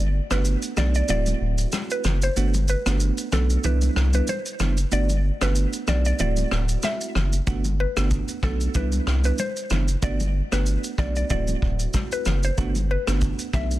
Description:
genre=afrobeats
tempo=94 BPM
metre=4/4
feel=swing 55% on 16ths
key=G major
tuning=A4 = 440 Hz
part: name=saturated sub bass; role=bass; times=0.0-13.8 s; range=D1 to C2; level=-22 LUFS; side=equal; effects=none
part: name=mallet-like synth pluck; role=melody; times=0.3-13.7 s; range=A4 to E5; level=-30 LUFS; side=left 1 dB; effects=chorus, digital delay
part: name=bell-like FM electric piano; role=accompaniment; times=0.3-13.8 s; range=G3 to F#4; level=-30 LUFS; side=right 6 dB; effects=chorus
part: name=vintage brush drum kit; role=drums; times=0.3-13.8 s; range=kick drum, rim click, shaker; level=-28 LUFS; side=equal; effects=soft clipping on snare
part: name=congas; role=percussion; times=0.8-13.7 s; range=none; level=-34 LUFS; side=left 4 dB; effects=none
room=small room ambience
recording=dense, heavily limited modern master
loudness=-21 LUFS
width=side -15 dB against mid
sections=0.0-13.8 A section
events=break 0.0-7.5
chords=0.0 Gmaj7; 1.1 D9; 2.4 Gmaj7; 3.6 Cmaj9; 4.9 Gmaj7; 6.2 D9; 7.5 Gmaj7; 8.7 Cmaj9; 10.0 Gmaj7; 11.3 D9; 12.6 Gmaj7

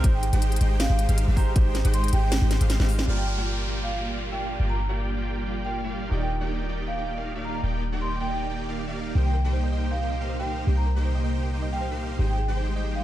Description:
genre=future bass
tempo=158 BPM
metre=4/4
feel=half-time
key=G phrygian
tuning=A4 = 438 Hz
part: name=marimba with soft mallets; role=melody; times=0.0-13.0 s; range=F5 to C6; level=-34 LUFS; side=right 1 dB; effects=sidechain pumping, ping-pong delay
part: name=clear concert grand piano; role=accompaniment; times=0.0-9.2 s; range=Eb3 to D5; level=-38 LUFS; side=right 6 dB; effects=sidechain pumping, ping-pong delay
part: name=dense compressed supersaw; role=riff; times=0.0-13.0 s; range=Ab3 to G5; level=-32 LUFS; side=equal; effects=cassette tape, sidechain pumping, low-pass filter
part: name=warm 808-style bass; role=bass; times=0.0-13.0 s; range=Eb1 to C2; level=-25 LUFS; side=equal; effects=tube saturation, sidechain pumping
part: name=electronic kick drum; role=drums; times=0.0-1.6 s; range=none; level=-20 LUFS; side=equal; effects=none
part: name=trap drum kit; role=drums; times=0.0-3.2 s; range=crash cymbal, hi-hat, snare drum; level=-30 LUFS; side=equal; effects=low-pass filter on hats, low-pass filter on snare, low-pass filter on cymbals
part: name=ethereal airy pad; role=sustained chords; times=4.2-13.0 s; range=C3 to D5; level=-38 LUFS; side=right 1 dB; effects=ensemble chorus, built-in reverb, phaser, sidechain pumping
part: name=downlifter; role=sound effects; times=3.1-6.1 s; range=none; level=-36 LUFS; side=equal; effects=none
part: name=thumb-piano-like synth pluck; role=arpeggios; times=9.2-13.0 s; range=G4 to G5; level=-40 LUFS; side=right 4 dB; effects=chorus, sidechain pumping, ping-pong delay
room=digital ambience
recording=none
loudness=-23 LUFS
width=side -13 dB against mid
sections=0.0-3.1 A section; 3.1-13.0 B section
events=drop 0.0-3.1; kick drops out 2.3-3.1; drum fill 2.5-3.1; band accent 3.0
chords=0.0 Abmaj7; 3.1 Gm7; 6.1 Ebmaj7; 9.2 Cm7; 12.2 Abmaj7

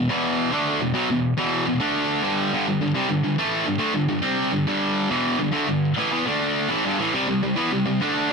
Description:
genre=metal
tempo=104 BPM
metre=4/4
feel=straight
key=unclear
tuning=A4 = 439 Hz
part: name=high-gain distorted guitar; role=solo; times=0.0-8.3 s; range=E2 to D4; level=-20 LUFS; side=equal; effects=distortion
room=light reverb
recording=dark, warm production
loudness=-20 LUFS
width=side -4 dB against mid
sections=0.0-8.3 A section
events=none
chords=0.0 Em; 2.5 G5; 7.1 C5

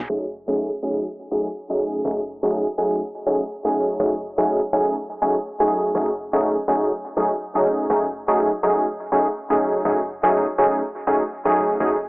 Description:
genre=house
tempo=123 BPM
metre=4/4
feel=swing 57% on 16ths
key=F# dorian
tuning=A4 = 440 Hz
part: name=woody FM bass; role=bass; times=0.0-12.1 s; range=F#1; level=-34 LUFS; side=equal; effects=none
part: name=warm analog keys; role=stabs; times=0.1-12.0 s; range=F#3 to G#4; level=-19 LUFS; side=equal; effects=chorus, low-pass filter, tape echo
room=moderate echo chamber reverb, RT60 1.4 s, small room reverb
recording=dry, gritty hardware recording, low-pass filter, telephone sound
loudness=-19 LUFS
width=side -24 dB against mid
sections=0.1-12.1 A section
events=filter sweep 0.1-12.1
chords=0.1 F#m69

